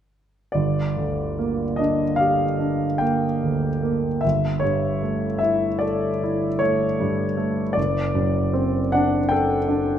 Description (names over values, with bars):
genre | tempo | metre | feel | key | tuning
classical, romantic nocturne for solo piano | 48-53 BPM (dotted quarters) | 9/8 | rubato | G minor | A4 = 440 Hz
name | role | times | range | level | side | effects
warm concert grand piano | solo | 0.5-10.0 s | F#1 to G5 | -20 LUFS | equal | none
room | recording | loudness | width
moderate large studio reverb, RT60 1.3 s | faint mains hum | -20 LUFS | side -9 dB against mid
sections
0.6-10.0 A section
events
none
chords
0.6 Gm; 4.2 A7/G; 7.8 D7/F#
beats
| 0.56 1.80 3.02 | 4.24 5.43 6.63 | 7.77 8.95